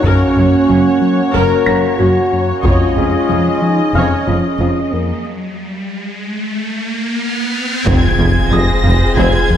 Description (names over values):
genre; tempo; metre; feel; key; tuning
cinematic, hybrid orchestral and electronic film score; 92 BPM; 4/4; straight; unclear; A4 = 438 Hz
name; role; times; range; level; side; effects
rich symphonic viola section; accompaniment; 0.0-9.6 s; F3 to Eb5; -21 LUFS; left 1 dB; none
chorused pulse-width pad; sustained chords; 0.0-9.6 s; Ab3 to Gb5; -20 LUFS; right 1 dB; none
dark French horn section; sustained chords; 0.0-5.2, 9.2-9.6 s; Bb3 to C5; -16 LUFS; equal; none
smooth synth bass; riff; 0.0-9.6 s; F2 to Gb3; -18 LUFS; left 2 dB; none
rich symphonic cello section; bass; 0.0-9.2 s; F2 to Gb2; -21 LUFS; right 3 dB; none
rich symphonic double bass section; bass; 0.0-9.3 s; F1 to Gb1; -21 LUFS; right 3 dB; none
taiko ensemble; drums; 0.0-3.3, 7.9-9.6 s; none; -20 LUFS; equal; none
felt-muted upright piano; texture; 0.0-9.6 s; F5 to Bb6; -25 LUFS; left 1 dB; digital delay
riser and impact; sound effects; 4.6-9.6 s; none; -21 LUFS; equal; none
rich symphonic violin section; melody; 7.2-9.6 s; F6 to Bb6; -20 LUFS; equal; none
warm studio violin section; second line; 7.9-9.6 s; Ab4 to C5; -21 LUFS; left 3 dB; none
punchy sub bass; bass; 7.9-9.6 s; F1; -19 LUFS; equal; none
warm tuba; bass; 7.9-9.3 s; F1; -22 LUFS; right 3 dB; none
room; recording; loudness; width
moderate scoring stage reverb, RT60 1.8 s; none; -12 LUFS; side -10 dB against mid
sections
0.0-7.9 A section; 7.9-9.6 B section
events
riser 4.6-7.9; break 5.3-7.9; drum fill 6.9-7.9; impact 7.9-9.6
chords
0.0 Gb; 2.6 Dbadd9/F; 7.9 Fm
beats
| 0.04 0.69 1.34 1.99 | 2.65 3.30 3.95 4.60 | 5.25 5.91 6.56 7.21 | 7.86 8.52 9.17